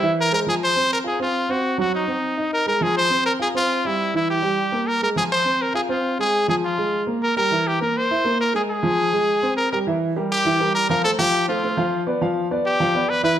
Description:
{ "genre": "latin", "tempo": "204 BPM", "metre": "4/4", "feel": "straight", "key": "F minor", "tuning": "A4 = 440 Hz", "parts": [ { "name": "bright trumpet", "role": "melody", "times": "0.0-13.4 s", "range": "Eb4 to C5", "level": "-20 LUFS", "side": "left 1 dB", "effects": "none" }, { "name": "dark concert grand piano", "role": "accompaniment", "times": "0.0-13.4 s", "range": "E3 to F5", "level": "-22 LUFS", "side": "right 1 dB", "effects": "none" } ], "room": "moderate large studio reverb, RT60 1.3 s", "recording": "none", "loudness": "-18 LUFS", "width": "side -10 dB against mid", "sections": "0.5-9.9 A section; 9.9-13.4 B section", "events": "none", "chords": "0.5 F5; 1.6 Ab7; 2.8 Fsus2; 4.0 Edim; 5.2 Fm; 6.3 Bb5; 7.5 C7; 8.7 Fmadd9; 9.9 Edim; 11.0 F; 12.2 G7", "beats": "0.17 | 0.47 0.76 1.05 1.35 | 1.64 1.94 2.23 2.52 | 2.82 3.11 3.40 3.70 | 3.99 4.29 4.58 4.87 | 5.17 5.46 5.75 6.05 | 6.34 6.64 6.93 7.22 | 7.52 7.81 8.11 8.40 | 8.69 8.98 9.28 9.57 | 9.87 10.16 10.45 10.74 | 11.04 11.33 11.62 11.92 | 12.21 12.50 12.80 13.09" }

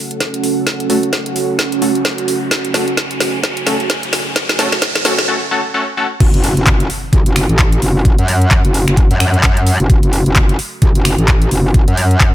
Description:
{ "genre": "bass house", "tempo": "130 BPM", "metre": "4/4", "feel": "swing 58% on 16ths", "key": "F# minor", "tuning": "A4 = 440 Hz", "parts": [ { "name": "dark analog pad", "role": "sustained chords", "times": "0.0-12.3 s", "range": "C#4 to G#5", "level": "-21 LUFS", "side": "right 4 dB", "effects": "chorus, sidechain pumping" }, { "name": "riser and impact", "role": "sound effects", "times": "1.2-8.1 s", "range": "none", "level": "-25 LUFS", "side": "equal", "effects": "none" }, { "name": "garage drum kit", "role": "drums", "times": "0.1-12.3 s", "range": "crash cymbal, finger snaps, handclaps, hi-hat, snare drum", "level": "-18 LUFS", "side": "equal", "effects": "none" }, { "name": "electronic kick drum", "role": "drums", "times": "0.2-12.3 s", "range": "none", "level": "-12 LUFS", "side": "equal", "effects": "high-pass filter on kick, high-pass filter on room" }, { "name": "band-passed chord stab", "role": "stabs", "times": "0.9-6.1 s", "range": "A3 to A4", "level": "-20 LUFS", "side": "left 2 dB", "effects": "chorus, sidechain pumping, tape echo" }, { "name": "metallic wobble bass", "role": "bass", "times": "6.2-12.3 s", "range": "F#1 to F#2", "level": "-13 LUFS", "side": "equal", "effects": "chorus, sidechain pumping" } ], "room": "light reverb", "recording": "none", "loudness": "-11 LUFS", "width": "side -13 dB against mid", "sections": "0.0-6.2 A section; 6.2-12.3 B section", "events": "build-up 0.0-6.2; drum fill 0.0-5.3; filter sweep on synth stab 0.0-6.2; riser 1.2-5.3; break 5.3-6.2; drop 6.2-12.3; impact 6.2-8.1", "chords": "0.0 F#m", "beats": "0.20 | 0.67 1.13 1.59 2.05 | 2.51 2.97 3.44 3.90 | 4.36 4.82 5.28 5.74 | 6.21 6.67 7.13 7.59 | 8.05 8.51 8.97 9.44 | 9.90 10.36 10.82 11.28 | 11.74 12.21" }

